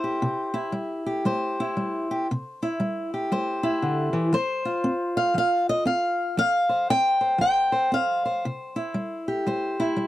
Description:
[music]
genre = acoustic country blues, solo or duo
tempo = 117 BPM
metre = 4/4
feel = swing 62% on 8ths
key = C major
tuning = A4 = 440 Hz
[part]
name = fingerpicked steel-string acoustic guitar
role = solo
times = 0.0-10.1 s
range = C3 to G5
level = -22 LUFS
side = equal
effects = none
[sound]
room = light reverb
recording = dry, close 1970s-style studio recording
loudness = -22 LUFS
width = side -15 dB against mid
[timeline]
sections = 0.0-10.1 A section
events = none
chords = 0.0 C; 4.3 F5; 8.4 C

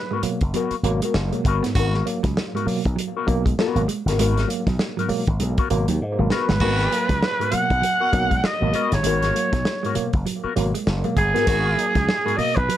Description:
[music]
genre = funk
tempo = 99 BPM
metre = 4/4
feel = swing 60% on 16ths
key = G# minor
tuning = A4 = 440 Hz
[part]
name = growling trumpet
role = melody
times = 0.0-0.4, 6.3-12.8 s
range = G#4 to F#5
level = -22 LUFS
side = right 1 dB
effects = none
[part]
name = mellow electric guitar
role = accompaniment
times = 0.1-12.7 s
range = B3 to A#4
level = -25 LUFS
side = left 8 dB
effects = wah
[part]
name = mellow electric guitar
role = riff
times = 0.1-12.8 s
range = F#3 to B3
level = -29 LUFS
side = right 8 dB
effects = none
[part]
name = tine electric piano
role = stabs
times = 0.1-12.5 s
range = G#2 to A#3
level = -27 LUFS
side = right 1 dB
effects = overdrive, fast stereo tremolo, tape echo
[part]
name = slap bass with an envelope filter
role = bass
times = 0.2-12.7 s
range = F#1 to G#2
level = -23 LUFS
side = equal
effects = none
[part]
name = warm soul drum kit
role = drums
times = 0.2-12.8 s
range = crash cymbal, hi-hat, kick drum, snare drum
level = -25 LUFS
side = equal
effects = none
[part]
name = growling baritone saxophone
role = second line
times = 1.8-1.9, 6.6-7.0, 11.5-11.9 s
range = F#4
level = -29 LUFS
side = right 4 dB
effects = none
[sound]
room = light reverb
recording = none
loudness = -19 LUFS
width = side -12 dB against mid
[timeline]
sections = 0.0-12.8 A section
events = drum fill 6.0-6.6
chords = 0.0 G#m9

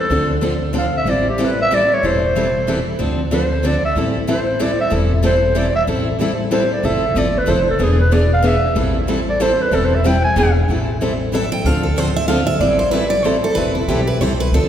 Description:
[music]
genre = acoustic string swing (jazz manouche)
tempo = 187 BPM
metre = 3/4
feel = swing 60% on 8ths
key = A minor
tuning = A4 = 440 Hz
[part]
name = growling clarinet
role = melody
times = 0.0-10.5 s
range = G4 to G#5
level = -19 LUFS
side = right 1 dB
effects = none
[part]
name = picked steel-string acoustic guitar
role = accompaniment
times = 0.1-14.7 s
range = D3 to A4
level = -21 LUFS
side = left 2 dB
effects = none
[part]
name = picked steel-string acoustic guitar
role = accompaniment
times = 0.1-14.7 s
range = D3 to B4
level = -24 LUFS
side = right 3 dB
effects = none
[part]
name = upright bass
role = bass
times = 0.1-14.7 s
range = E1 to D2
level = -20 LUFS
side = equal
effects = none
[part]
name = picked steel-string acoustic guitar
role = second line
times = 11.3-14.7 s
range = E4 to G5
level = -18 LUFS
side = right 1 dB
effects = none
[sound]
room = wet concert hall reverb, RT60 2.1 s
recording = heard from further back in the room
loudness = -14 LUFS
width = side -10 dB against mid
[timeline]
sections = 0.0-10.7 A section; 10.7-14.7 A section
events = clarinet solo 0.0-10.7; steel-string acoustic guitar solo 10.7-14.7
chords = 0.1 Dm7; 1.1 Am7; 3.0 Dm7; 4.0 Am7; 6.8 Fmaj7; 7.8 E7; 8.8 Am7; 10.4 E7; 10.7 Am7; 11.6 Dm7; 12.6 Am9

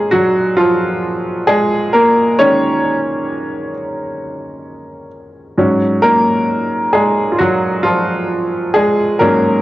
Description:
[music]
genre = R&B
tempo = 66 BPM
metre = 4/4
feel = swing 58% on 16ths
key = Eb minor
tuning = A4 = 440 Hz
[part]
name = clear baby grand piano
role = solo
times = 0.0-9.6 s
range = Ab2 to Db5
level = -12 LUFS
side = equal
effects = cassette tape
[sound]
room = moderate spring reverb, RT60 1.8 s, studio ambience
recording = home recording on cassette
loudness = -12 LUFS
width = side -16 dB against mid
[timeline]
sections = 0.0-9.6 A section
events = grand piano solo 0.0-9.6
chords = 0.0 Eb9sus4; 5.6 Ab9sus4

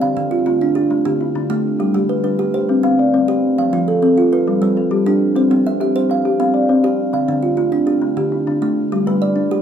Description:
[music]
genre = southern african traditional, mbira-style interlocking cycle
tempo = 135 BPM (dotted quarters)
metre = 12/8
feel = straight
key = G mixolydian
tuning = A4 = 440 Hz
[part]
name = kalimba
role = arpeggios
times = 0.0-9.6 s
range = D3 to F5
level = -17 LUFS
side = left 4 dB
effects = none
[part]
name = kalimba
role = arpeggios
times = 0.0-9.6 s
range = D3 to F5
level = -17 LUFS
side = right 4 dB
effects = none
[sound]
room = moderate large studio reverb, RT60 0.9 s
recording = band playing live in one room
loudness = -14 LUFS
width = side -8 dB against mid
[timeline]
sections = 0.0-8.9 A section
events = none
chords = 0.0 Dm; 1.8 G; 2.7 C5; 3.6 F; 4.5 G; 5.4 C; 7.1 Dm; 8.9 G

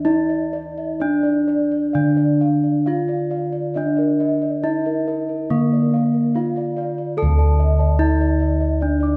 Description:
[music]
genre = Javanese gamelan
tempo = 62-73 BPM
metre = 4/4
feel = straight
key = D pelog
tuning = A4 = 442 Hz
[part]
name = gamelan-type bronze metallophone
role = melody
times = 0.0-9.2 s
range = Bb3 to A4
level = -22 LUFS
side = equal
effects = none
[part]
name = gamelan-type bronze metallophone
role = arpeggios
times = 0.0-9.2 s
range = Bb4 to A5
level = -33 LUFS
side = equal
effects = none
[part]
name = gamelan-type bossed gongs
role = bass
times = 0.0-9.2 s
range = D2 to A4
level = -23 LUFS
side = equal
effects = none
[part]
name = gamelan-type bossed gongs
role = arpeggios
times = 0.1-9.2 s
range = Bb4 to D6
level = -31 LUFS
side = equal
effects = none
[sound]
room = wet recital hall reverb, RT60 1.7 s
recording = recorded in a church or concert hall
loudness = -19 LUFS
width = mono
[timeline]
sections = 0.0-7.2 A section; 7.2-9.2 B section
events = none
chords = none

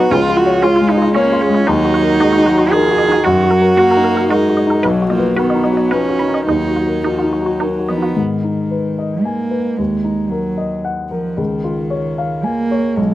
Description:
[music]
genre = neoclassical piano and strings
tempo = 113 BPM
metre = 3/4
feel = rubato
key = Eb minor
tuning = A4 = 440 Hz
[part]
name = dark cello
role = second line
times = 0.0-13.1 s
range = Eb3 to Ab4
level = -17 LUFS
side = right 3 dB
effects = none
[part]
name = warm grand piano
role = accompaniment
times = 0.0-13.1 s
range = B1 to Ab5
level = -17 LUFS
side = left 3 dB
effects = none
[part]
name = warm viola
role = accompaniment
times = 0.0-8.2 s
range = D#3 to Cb4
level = -21 LUFS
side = right 2 dB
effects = none
[part]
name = resonant blip pluck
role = arpeggios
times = 0.0-8.1 s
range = Db4 to B5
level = -22 LUFS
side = right 1 dB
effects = chorus
[sound]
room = little or no reverb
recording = recorded outdoors, with no room sound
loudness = -13 LUFS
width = side -14 dB against mid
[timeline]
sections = 0.0-8.2 A section; 8.2-13.1 B section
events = none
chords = 0.1 Db; 1.7 Ebm; 3.2 Gb6; 4.8 B; 6.5 Ebm; 8.2 Abm; 9.8 Ebm; 11.4 Db

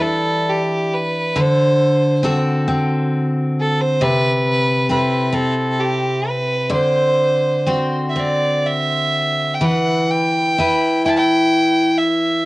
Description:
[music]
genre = celtic folk, Celtic slow air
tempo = 41-46 BPM (dotted quarters)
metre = 6/8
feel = rubato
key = E minor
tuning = A4 = 439 Hz
[part]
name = clear fiddle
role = melody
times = 0.0-12.5 s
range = G4 to A5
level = -18 LUFS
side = right 1 dB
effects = none
[part]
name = picked steel-string acoustic guitar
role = accompaniment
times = 0.0-12.5 s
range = C3 to C5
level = -18 LUFS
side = left 1 dB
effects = cassette tape
[sound]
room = moderate small room reverb, RT60 0.5 s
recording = home recording on cassette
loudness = -15 LUFS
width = side -20 dB against mid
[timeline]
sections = 0.0-12.5 A section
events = none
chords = 0.0 E5; 1.4 D7; 4.0 Am/C; 6.7 D7; 9.6 Em

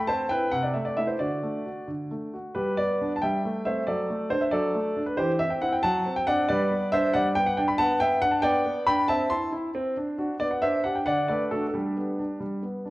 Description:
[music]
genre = classical-period piano sonatina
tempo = 91 BPM (dotted quarters)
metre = 6/8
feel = straight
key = G major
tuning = A4 = 441 Hz
[part]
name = warm concert grand piano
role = solo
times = 0.0-12.9 s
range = C3 to C6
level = -24 LUFS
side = equal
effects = none
[sound]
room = wet recital hall reverb, RT60 1.5 s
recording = worn, warbling old tape, cassette tape, warbly pitch drift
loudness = -24 LUFS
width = side -18 dB against mid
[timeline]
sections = 0.0-2.6 A section; 2.6-12.9 B section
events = none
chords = 0.0 Am; 0.5 Am/C; 1.2 D; 2.6 G; 3.2 Am7/G; 3.9 D/F#; 5.2 C/E; 5.8 D7/F#; 6.5 G; 7.8 G/B; 9.1 Am/C; 9.7 D7/C; 10.4 G/B; 11.1 D; 11.7 G

